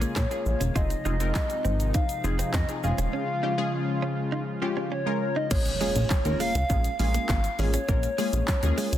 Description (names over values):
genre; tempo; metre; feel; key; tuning
dance-pop; 101 BPM; 4/4; straight; Bb minor; A4 = 437 Hz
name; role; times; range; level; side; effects
funky polysynth comp; accompaniment; 0.0-8.9 s; Ab3 to Bb4; -32 LUFS; left 2 dB; chorus, phaser, sidechain pumping
warm analog pad; sustained chords; 0.0-5.5 s; C3 to F4; -32 LUFS; left 1 dB; chorus, sidechain pumping
direct-recorded clean electric guitar; riff; 0.0-8.9 s; Ab3 to F4; -35 LUFS; right 5 dB; lush chorus
plucky analog bass; bass; 0.0-9.0 s; E1 to Bb2; -26 LUFS; equal; sidechain pumping
pop drum kit; drums; 0.0-9.0 s; crash cymbal, handclaps, hi-hat, kick drum, shaker, snare drum; -28 LUFS; equal; none
hollow clarinet-like synth lead; melody; 0.2-9.0 s; Db5 to F5; -31 LUFS; equal; chorus, phaser, digital delay
impact; sound effects; 5.6-7.9 s; none; -37 LUFS; equal; none
room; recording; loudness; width
light reverb, digital ambience; dense, heavily limited modern master; -24 LUFS; side -12 dB against mid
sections
0.0-5.5 A section; 5.5-9.0 B section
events
impact 5.5-7.9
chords
0.0 Bbm7; 0.8 Fm7; 2.8 Db; 5.5 Bbm7